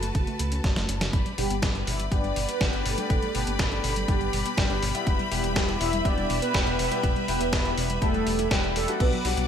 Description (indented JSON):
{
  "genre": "italo disco",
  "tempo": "122 BPM",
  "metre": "4/4",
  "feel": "straight",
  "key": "unclear",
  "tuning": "A4 = 441 Hz",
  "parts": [
    { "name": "mellow synth brass", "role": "melody", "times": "0.0-9.5 s", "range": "G3 to E5", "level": "-30 LUFS", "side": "right 1 dB", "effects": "chorus, digital delay" },
    { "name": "rich symphonic string section", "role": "sustained chords", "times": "0.0-9.5 s", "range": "F#4 to D6", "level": "-32 LUFS", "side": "left 3 dB", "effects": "none" },
    { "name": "soft round pluck", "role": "arpeggios", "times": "0.0-9.5 s", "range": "B2 to C#5", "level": "-35 LUFS", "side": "right 3 dB", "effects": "lush chorus, cassette tape, digital delay" },
    { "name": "round analog bass", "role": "bass", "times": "0.0-9.5 s", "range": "E1 to C#2", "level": "-31 LUFS", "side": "equal", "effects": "none" },
    { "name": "dusty soul sampler-style drum kit", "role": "drums", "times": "0.0-9.5 s", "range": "crash cymbal, hi-hat, snare drum", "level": "-30 LUFS", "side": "equal", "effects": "high-pass filter on hats, small room reverb, high-pass filter on snare, high-pass filter on cymbals, gated reverb" },
    { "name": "electronic kick drum", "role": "drums", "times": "0.1-9.1 s", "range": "none", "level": "-27 LUFS", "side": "equal", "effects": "small room reverb" },
    { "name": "clear concert grand piano", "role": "stabs", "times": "1.4-9.5 s", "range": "F#3 to G4", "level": "-32 LUFS", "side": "left 5 dB", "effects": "lush chorus, low-pass filter" }
  ],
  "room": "moderate plate reverb, RT60 1.3 s",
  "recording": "bright 1980s-style digital production",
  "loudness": "-23 LUFS",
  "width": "side -8 dB against mid",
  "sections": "0.0-1.1 A section; 1.1-9.0 B section",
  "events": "drum fill 0.6-1.1; filter sweep on synth arpeggio sound 1.1-9.0; filter sweep on grand piano 1.1-9.0",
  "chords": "0.0 F#m; 1.1 G; 5.1 Em",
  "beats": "0.15 0.64 | 1.13 1.63 2.12 2.61 | 3.10 3.59 4.08 4.58 | 5.07 5.56 6.05 6.54 | 7.04 7.53 8.02 8.51 | 9.00"
}